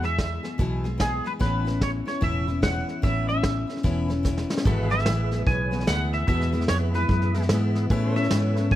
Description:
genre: honky-tonk and classic country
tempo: 148 BPM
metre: 4/4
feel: swing 63% on 8ths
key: E major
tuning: A4 = 444 Hz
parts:
  - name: twangy electric guitar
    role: melody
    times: 0.0-8.8 s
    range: G#4 to G#5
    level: -29 LUFS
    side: right 1 dB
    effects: analog chorus
  - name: picked steel-string acoustic guitar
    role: accompaniment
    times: 0.0-8.8 s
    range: E2 to G#4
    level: -29 LUFS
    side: left 4 dB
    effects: none
  - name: vintage muted fingered electric bass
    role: bass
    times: 0.0-8.8 s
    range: E1 to A2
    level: -25 LUFS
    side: equal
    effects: none
  - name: vintage brush drum kit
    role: drums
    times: 0.0-8.8 s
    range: hi-hat, kick drum, snare drum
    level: -27 LUFS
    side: equal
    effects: none
  - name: tonewheel organ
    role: accompaniment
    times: 4.6-8.8 s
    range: G#4 to E5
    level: -35 LUFS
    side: right 6 dB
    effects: slow rotary speaker, overdrive, chorus vibrato
  - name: pedal steel guitar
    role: sustained chords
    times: 4.7-8.8 s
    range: G#4 to E5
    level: -36 LUFS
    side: equal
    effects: none
room: little or no reverb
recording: none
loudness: -22 LUFS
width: side -13 dB against mid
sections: 0.0-4.7 A section; 4.7-8.8 B section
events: drum fill 4.3-4.7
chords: 0.0 E; 1.4 Aadd9; 4.7 E; 7.9 Aadd9

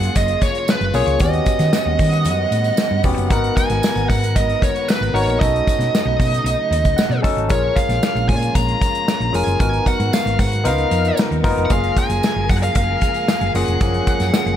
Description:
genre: polished 1980s jazz-funk pop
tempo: 114 BPM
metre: 4/4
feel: straight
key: F# major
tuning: A4 = 441 Hz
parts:
  - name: bluesy overdriven lead guitar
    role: melody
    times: 0.0-14.6 s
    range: B4 to A#5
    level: -21 LUFS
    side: right 1 dB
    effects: distortion
  - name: barky tine electric piano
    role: accompaniment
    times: 0.0-14.6 s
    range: E#3 to A5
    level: -23 LUFS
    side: left 2 dB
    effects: overdrive, lush chorus
  - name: warm symphonic string section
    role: sustained chords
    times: 0.0-14.6 s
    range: C#3 to F#5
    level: -29 LUFS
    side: right 1 dB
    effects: none
  - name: hollow-body short-scale fingered electric bass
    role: bass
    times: 0.0-14.6 s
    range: E1 to D#3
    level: -20 LUFS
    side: equal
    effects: none
  - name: modern studio drum kit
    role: drums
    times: 0.0-14.6 s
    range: hi-hat, kick drum, snare drum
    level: -20 LUFS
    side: equal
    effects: none
  - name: tambourine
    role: percussion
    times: 0.2-14.5 s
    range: none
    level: -36 LUFS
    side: right 13 dB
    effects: none
room: small room ambience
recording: none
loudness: -15 LUFS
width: side -10 dB against mid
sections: 0.0-14.6 A section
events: tine electric piano fill 6.5-7.5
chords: 0.0 F#maj9; 1.2 D#7alt; 3.3 G#m9; 5.4 B9; 7.5 A#m7; 9.6 G#m7; 10.7 C#13; 11.7 F#maj9

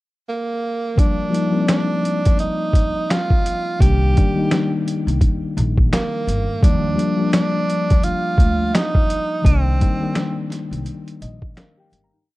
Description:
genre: lo-fi hip hop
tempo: 85 BPM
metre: 4/4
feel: swing 58% on 16ths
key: C minor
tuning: A4 = 440 Hz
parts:
  - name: clear tenor saxophone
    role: melody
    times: 0.3-10.5 s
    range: Bb3 to G4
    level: -24 LUFS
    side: right 2 dB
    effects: none
  - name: reed electric piano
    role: accompaniment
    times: 1.0-12.4 s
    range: Eb3 to Bb5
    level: -22 LUFS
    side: left 3 dB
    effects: cassette tape
  - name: boom bap sampler-style drum kit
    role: drums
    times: 1.0-12.1 s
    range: finger snaps, hi-hat, kick drum, snare drum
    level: -17 LUFS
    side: equal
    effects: none
  - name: upright bass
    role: bass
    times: 3.8-12.1 s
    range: G1 to Eb2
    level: -20 LUFS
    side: equal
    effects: none
room: small room ambience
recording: dark, warm production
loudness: -16 LUFS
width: side -19 dB against mid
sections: 0.0-1.0 pickup bar; 1.0-12.3 A section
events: fade-out 9.4-12.3; reed electric piano fill 10.9-12.3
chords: 0.0 N.C.; 1.0 Ebmaj7; 3.8 Cm7; 6.6 Ebmaj7; 9.4 Cm7

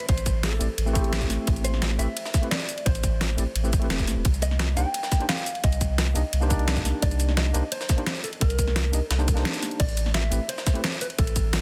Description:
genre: liquid drum and bass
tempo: 173 BPM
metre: 4/4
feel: straight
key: unclear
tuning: A4 = 442 Hz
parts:
  - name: mellow electric guitar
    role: melody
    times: 0.0-11.6 s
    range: A4 to G5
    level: -36 LUFS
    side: equal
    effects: dub echo
  - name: jungle sampler-style drum kit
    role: drums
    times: 0.0-11.6 s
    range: hi-hat, ride cymbal, snare drum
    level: -37 LUFS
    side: equal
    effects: high-pass filter on cymbals, high-pass filter on snare, high-pass filter on hats
  - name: downlifter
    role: sound effects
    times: 0.0-1.5 s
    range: none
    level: barely audible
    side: none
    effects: none
  - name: warm sub bass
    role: bass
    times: 0.1-11.6 s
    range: E1 to C2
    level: -27 LUFS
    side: equal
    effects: none
  - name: electronic kick drum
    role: drums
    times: 0.1-11.4 s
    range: none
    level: -26 LUFS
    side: equal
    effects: none
  - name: pop drum kit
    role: drums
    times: 0.1-11.6 s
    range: crash cymbal, hi-hat, shaker, snare drum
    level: -32 LUFS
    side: equal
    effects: overdrive
  - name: tine electric piano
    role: accompaniment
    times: 0.6-10.8 s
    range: A3 to Eb5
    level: -35 LUFS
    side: equal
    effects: overdrive
room: digital ambience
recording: dense, heavily limited modern master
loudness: -25 LUFS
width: mono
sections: 0.0-11.6 A section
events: break 9.5-9.8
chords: 0.0 Am9; 4.2 Cm9; 9.8 Am

